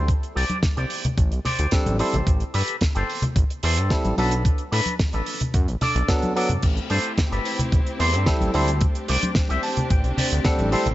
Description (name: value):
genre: nu-disco, nu disco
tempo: 110 BPM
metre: 4/4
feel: straight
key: unclear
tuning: A4 = 438 Hz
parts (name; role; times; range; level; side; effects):
- electric guitar with an envelope filter; riff; 0.0-10.9 s; D4 to A5; -27 LUFS; left 1 dB; wide subtle chorus, low-pass filter
- fat analog bass; bass; 0.0-10.9 s; G1 to A2; -23 LUFS; equal; sidechain pumping
- damped 70s drum kit; drums; 0.1-10.9 s; crash cymbal, hi-hat, snare drum; -28 LUFS; right 2 dB; none
- electronic kick drum; drums; 0.1-10.6 s; none; -21 LUFS; equal; none
- congas; percussion; 0.5-10.9 s; none; -28 LUFS; left 1 dB; none
- barky tine electric piano; accompaniment; 1.7-10.9 s; F#3 to A4; -26 LUFS; equal; sidechain pumping
- rich studio string section; sustained chords; 6.6-10.9 s; A3 to G4; -30 LUFS; left 1 dB; sidechain pumping
room: light reverb, small room ambience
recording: nothing above 7.8 kHz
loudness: -20 LUFS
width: side -15 dB against mid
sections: 0.0-10.9 A section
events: clean electric guitar fill 9.4-10.9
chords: 0.1 D7sus4; 2.0 Am7; 4.2 Bm7; 6.6 Am7; 8.8 D7sus4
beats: | 0.09 0.63 1.18 1.73 | 2.27 2.82 3.36 3.91 | 4.45 5.00 5.54 6.09 | 6.63 7.18 7.72 8.27 | 8.82 9.36 9.91 10.45